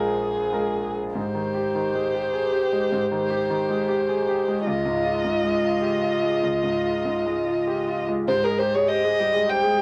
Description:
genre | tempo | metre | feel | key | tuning
neoclassical piano and strings | 95-105 BPM | 3/4 | rubato | unclear | A4 = 441 Hz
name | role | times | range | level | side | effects
dark violin | melody | 0.0-9.8 s | Ab4 to G5 | -27 LUFS | equal | cassette tape
bright concert grand piano | accompaniment | 0.0-9.8 s | Bb1 to C5 | -29 LUFS | equal | none
warm viola | accompaniment | 1.2-9.8 s | F4 to Ab4 | -28 LUFS | equal | none
room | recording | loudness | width
light reverb | home recording on cassette | -23 LUFS | mono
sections
0.0-1.2 A section; 1.2-8.3 B section; 8.3-9.8 C section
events
none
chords
0.0 Bb7(no3); 1.2 Abmaj7; 4.7 Dbadd9; 8.3 Abmaj7

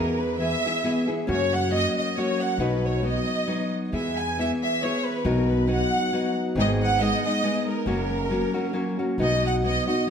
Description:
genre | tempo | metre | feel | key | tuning
mexican folk, mariachi | 137 BPM | 3/4 | swing 55% on 8ths, rubato | B major | A4 = 440 Hz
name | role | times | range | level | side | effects
rich studio violin section | melody | 0.0-10.1 s | A#4 to G#5 | -26 LUFS | right 1 dB | none
nylon-string guitar | accompaniment | 0.0-10.1 s | F#2 to G#4 | -25 LUFS | left 1 dB | none
upright bass | bass | 0.0-9.8 s | F#1 to F#2 | -29 LUFS | right 1 dB | none
room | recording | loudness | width
wet recital hall reverb, RT60 1.6 s | none | -22 LUFS | side -7 dB against mid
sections
0.0-10.1 A section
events
none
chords
0.0 E; 1.3 F#; 2.6 B; 3.9 E; 5.3 B; 6.6 G#m; 7.9 F#; 9.2 B

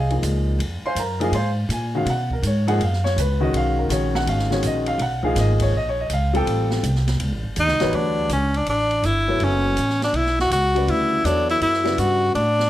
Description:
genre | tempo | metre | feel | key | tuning
modal jazz | 163 BPM | 4/4 | swing 66% on 8ths | D major from 7.9 s | A4 = 440 Hz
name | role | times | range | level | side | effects
warm upright piano | accompaniment | 0.0-12.3 s | Fb2 to C6 | -23 LUFS | left 1 dB | none
upright bass | bass | 0.0-12.7 s | F#1 to Cb3 | -22 LUFS | equal | none
open jazz drum kit | drums | 0.1-12.7 s | hi-hat, kick drum, ride cymbal, snare drum | -32 LUFS | right 1 dB | none
clear tenor saxophone | melody | 7.6-12.7 s | C#4 to F#4 | -19 LUFS | equal | plate reverb
room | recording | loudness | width
moderate studio reverb, RT60 0.7 s | none | -18 LUFS | side -14 dB against mid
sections
0.0-7.9 A section; 7.9-12.7 B section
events
none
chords
0.0 Dbmaj9; 2.1 Cbmaj9; 6.5 A7alt; 7.9 Dmaj9

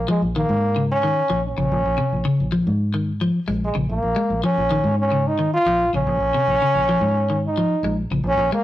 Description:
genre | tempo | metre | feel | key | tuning
afrobeat | 110 BPM | 4/4 | straight | Bb minor | A4 = 438 Hz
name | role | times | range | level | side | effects
warm trombone | melody | 0.0-8.6 s | Ab3 to F4 | -20 LUFS | equal | none
fingered electric bass | bass | 0.0-8.5 s | Bb1 to Ab2 | -24 LUFS | equal | none
clean electric guitar | arpeggios | 0.1-8.6 s | C3 to Ab3 | -23 LUFS | left 2 dB | none
room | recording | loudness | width
moderate stone room reverb, RT60 0.9 s | rough rehearsal-room recording, warm saturation | -18 LUFS | side -14 dB against mid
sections
0.0-8.6 A section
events
none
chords
0.0 Bbm7

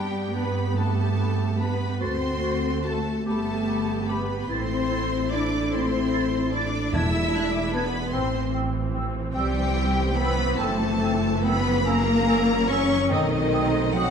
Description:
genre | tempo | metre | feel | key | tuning
classical, slow romantic movement for symphony orchestra | 48 BPM (dotted quarters) | 6/8 | rubato | G major | A4 = 440 Hz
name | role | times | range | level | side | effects
clear studio violin section | melody | 0.0-14.1 s | D#5 to F#6 | -32 LUFS | left 3 dB | none
bright clarinet | second line | 0.0-14.1 s | C4 to G4 | -36 LUFS | left 1 dB | none
large flute ensemble | second line | 0.0-14.1 s | B5 to A6 | -35 LUFS | right 4 dB | none
warm studio violin section | second line | 0.0-14.1 s | D#4 to E5 | -32 LUFS | left 2 dB | none
warm studio viola section | accompaniment | 0.0-14.1 s | E3 to G4 | -31 LUFS | right 2 dB | none
dark French horn section | sustained chords | 0.0-14.1 s | D#3 to E4 | -29 LUFS | left 4 dB | none
rich studio cello section | bass | 0.0-14.1 s | D#3 to E4 | -29 LUFS | equal | none
rich studio double bass section | bass | 0.0-14.1 s | E1 to G2 | -28 LUFS | right 3 dB | none
timpani | percussion | 6.9-8.1 s | E2 | -29 LUFS | equal | none
room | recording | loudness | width
wet scoring stage reverb, RT60 1.6 s | dark, warm production | -22 LUFS | side -7 dB against mid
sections
0.0-14.1 A section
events
none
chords
0.0 G; 2.0 D7; 3.3 G; 4.5 Am; 6.9 E7; 8.1 Am; 9.4 C; 10.6 F#m7b5; 11.9 F#7; 13.1 B7b9

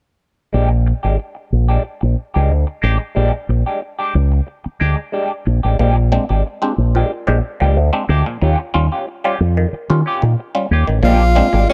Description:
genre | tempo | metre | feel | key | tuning
funk | 91 BPM | 4/4 | straight | Bb mixolydian | A4 = 439 Hz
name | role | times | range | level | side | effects
clean electric guitar | accompaniment | 0.5-11.7 s | Ab3 to G4 | -24 LUFS | equal | wah
fingered electric bass with an envelope filter | bass | 0.5-11.6 s | Ab1 to Eb3 | -16 LUFS | equal | none
muted clav | stabs | 5.8-11.6 s | Bb2 to G4 | -24 LUFS | equal | overdrive, phaser
electric guitar at the edge of break-up | riff | 11.0-11.6 s | Ab3 to Bb3 | -23 LUFS | equal | none
breathy tenor saxophone | melody | 11.1-11.7 s | Db4 to F4 | -18 LUFS | equal | none
room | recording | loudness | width
light reverb | none | -17 LUFS | mono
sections
0.5-11.0 A section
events
none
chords
0.5 Bb13; 8.4 Eb9; 11.0 Bb13

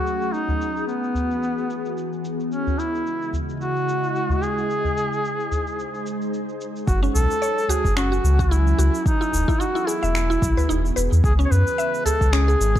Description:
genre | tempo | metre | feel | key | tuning
organic downtempo | 110 BPM | 4/4 | swing 56% on 16ths | C# minor | A4 = 440 Hz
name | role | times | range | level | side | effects
warm duduk | melody | 0.0-12.8 s | B3 to C#5 | -24 LUFS | equal | tape echo
ethereal airy pad | sustained chords | 0.0-12.8 s | C#3 to G#5 | -29 LUFS | equal | ensemble chorus, built-in reverb, sidechain pumping
electronic shaker and finger snaps | drums | 0.1-12.8 s | none | -32 LUFS | equal | overdrive, low-pass filter on perc, low-pass filter on snare
udu | percussion | 0.5-12.2 s | none | -27 LUFS | equal | none
warm sub bass | bass | 6.9-12.8 s | E1 to F#2 | -19 LUFS | equal | none
electronic kick drum | drums | 6.9-12.8 s | none | -22 LUFS | equal | overdrive
mallet-like synth pluck | arpeggios | 7.0-12.8 s | C#4 to E5 | -27 LUFS | equal | chorus, tape echo
room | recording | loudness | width
moderate recital hall reverb, RT60 1.5 s, digital ambience | dark, warm production | -19 LUFS | side -12 dB against mid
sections
0.0-6.9 A section; 6.9-12.8 B section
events
filter sweep on ambient pad 0.0-6.9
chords
0.3 Emaj7; 2.5 C#m; 4.7 G#; 6.9 F#m7; 9.1 Emaj7; 11.2 C#m

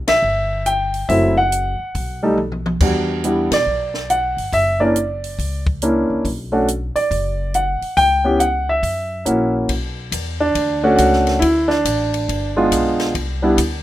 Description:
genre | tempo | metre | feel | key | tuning
jazz piano trio | 139 BPM | 4/4 | swing 65% on 8ths | B minor | A4 = 440 Hz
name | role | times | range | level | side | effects
upright bass | bass | 0.0-13.8 s | F#1 to B2 | -24 LUFS | left 1 dB | none
warm baby grand piano | melody | 0.1-13.6 s | F#3 to G5 | -16 LUFS | equal | none
compact cocktail drum kit | drums | 0.1-13.7 s | crash cymbal, hi-hat, kick drum, ride cymbal, snare drum, toms | -24 LUFS | equal | none
room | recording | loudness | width
light reverb | rough home demo mix | -16 LUFS | side -14 dB against mid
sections
0.0-9.7 A section; 9.7-13.8 A section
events
band accent 0.0, 3.4; drum fill 2.4-2.8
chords
0.0 Cmaj7 (rootless); 1.1 F#m7b5; 1.9 B7(no3); 2.8 Em7; 4.5 F#7b13; 6.2 Bm; 8.0 C#dim; 8.8 F#7; 9.7 Bm7; 11.4 D5; 12.3 G7b9; 13.1 N.C.

